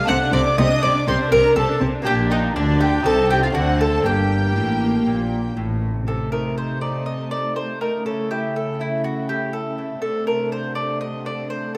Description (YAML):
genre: classical, baroque-style concerto movement with solo episodes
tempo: 121 BPM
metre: 4/4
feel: straight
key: unclear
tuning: A4 = 440 Hz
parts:
  - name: mandolin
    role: melody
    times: 0.0-11.8 s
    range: D4 to F#5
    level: -25 LUFS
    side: equal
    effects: none
  - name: dark chamber violin section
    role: second line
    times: 0.0-11.8 s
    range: D4 to F#5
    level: -33 LUFS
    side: equal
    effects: none
  - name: lute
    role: accompaniment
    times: 0.0-11.8 s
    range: G2 to A4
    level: -32 LUFS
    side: equal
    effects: none
  - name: warm studio viola section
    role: accompaniment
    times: 0.0-11.8 s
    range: A3 to D4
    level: -30 LUFS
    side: equal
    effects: none
  - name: rich chamber violin section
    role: melody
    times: 0.1-11.8 s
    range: D5 to F#6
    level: -34 LUFS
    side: equal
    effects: none
  - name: dark chamber double bass section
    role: bass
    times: 0.1-6.1 s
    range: G1 to D2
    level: -27 LUFS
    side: equal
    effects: none
  - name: warm chamber cello section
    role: bass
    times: 0.1-11.8 s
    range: G2 to D3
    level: -28 LUFS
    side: equal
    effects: none
room: wet recital hall reverb, RT60 1.7 s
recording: none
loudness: -21 LUFS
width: mono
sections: 0.0-6.1 A section; 6.1-11.8 B section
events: none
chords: 0.1 D5/C; 2.1 Gm/Bb; 3.1 Am7b5/C; 3.6 D7; 4.1 Gm; 6.1 Adim/C; 8.1 A7/C#; 10.0 D7/C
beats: | 0.08 0.58 1.07 1.57 | 2.06 2.56 3.06 3.55 | 4.06 4.56 5.07 5.57 | 6.07 6.57 7.06 7.56 | 8.05 8.55 9.04 9.53 | 10.03 10.52 11.01 11.50